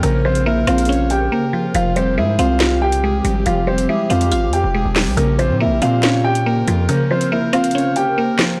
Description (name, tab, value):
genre	hip hop, drill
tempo	140 BPM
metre	4/4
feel	half-time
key	unclear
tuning	A4 = 440 Hz
part	dark grand piano	melody	0.0-8.6 s	Bb3 to G5	-22 LUFS	equal	low-pass filter
part	mallet-like synth pluck	accompaniment	0.0-8.6 s	Db3 to F4	-22 LUFS	equal	chorus, low-pass filter
part	granular cloud pad	sustained chords	0.0-8.6 s	Db3 to C5	-29 LUFS	equal	built-in reverb
part	distorted 808-style bass	bass	0.0-6.9 s	E1 to Bb2	-22 LUFS	equal	distortion
part	drill drum kit	drums	0.0-8.5 s	handclaps, hi-hat, rim click, snare drum	-24 LUFS	equal	none
room	digital ambience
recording	dry, gritty hardware recording, cassette tape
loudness	-17 LUFS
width	mono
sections	0.0-8.6 A section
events	break 1.3-1.7; kick muted 6.9-8.6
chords	0.0 Bbmadd9; 1.7 Fmadd9; 5.2 Bbmadd9